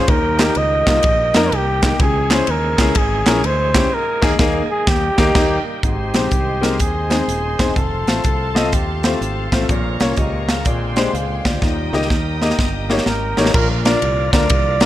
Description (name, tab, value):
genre	uptempo gospel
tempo	125 BPM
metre	4/4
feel	swing 65% on 8ths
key	unclear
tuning	A4 = 440 Hz
part	warm flugelhorn	melody	0.0-9.5, 13.1-14.9 s	G4 to Eb5	-20 LUFS	equal	none
part	warm upright piano	accompaniment	0.0-14.9 s	Ab2 to F5	-21 LUFS	left 3 dB	none
part	bright tonewheel organ	sustained chords	0.0-14.9 s	D3 to C5	-28 LUFS	right 2 dB	slow rotary speaker, overdrive
part	fingered electric bass	bass	0.1-14.9 s	Eb1 to F2	-22 LUFS	equal	none
part	crisp fusion drum kit	drums	0.1-14.9 s	crash cymbal, hi-hat, kick drum, ride cymbal, snare drum	-18 LUFS	equal	none
part	group handclap	percussion	0.4-3.8 s	none	-28 LUFS	right 3 dB	none
part	warm studio string section	sustained chords	5.8-13.5 s	C5 to Eb6	-32 LUFS	left 1 dB	none
room	light reverb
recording	none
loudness	-15 LUFS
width	side -13 dB against mid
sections	0.0-5.8 A section; 5.8-13.5 B section; 13.5-14.9 A section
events	band accent 3.9-5.8; drum fill 11.6-13.5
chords	0.1 Eb; 2.0 Dbm; 3.9 Ebsus4; 4.9 Eb; 5.8 Ab; 7.8 F; 9.7 Bbm; 10.7 Bb13; 11.6 Eb; 13.5 Bb